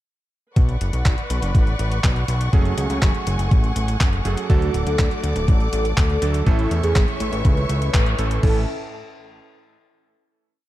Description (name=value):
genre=italo disco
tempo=122 BPM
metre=4/4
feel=straight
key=A major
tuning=A4 = 440 Hz
part: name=rich symphonic string section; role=sustained chords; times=0.6-8.7 s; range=A3 to D6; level=-29 LUFS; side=equal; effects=none
part: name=fat analog bass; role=bass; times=0.6-8.7 s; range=D1 to E2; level=-22 LUFS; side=equal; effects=none
part: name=detuned 8-bit digital drum machine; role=drums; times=0.6-8.5 s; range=crash cymbal, handclaps, hi-hat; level=-29 LUFS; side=equal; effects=none
part: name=electronic kick drum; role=drums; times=0.6-8.5 s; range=none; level=-18 LUFS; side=equal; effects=none
part: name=bright electric grand piano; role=stabs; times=2.5-8.6 s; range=A2 to A4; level=-29 LUFS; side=right 5 dB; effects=none
part: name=mellow synth brass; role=melody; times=4.5-8.6 s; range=E4 to B4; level=-27 LUFS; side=equal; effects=chorus, tape echo
room=digital ambience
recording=dark, warm production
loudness=-17 LUFS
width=side -15 dB against mid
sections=0.6-8.4 verse; 8.4-10.4 final chord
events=band accent 7.9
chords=0.6 Bmadd9; 2.5 F#madd9; 4.5 D; 6.5 A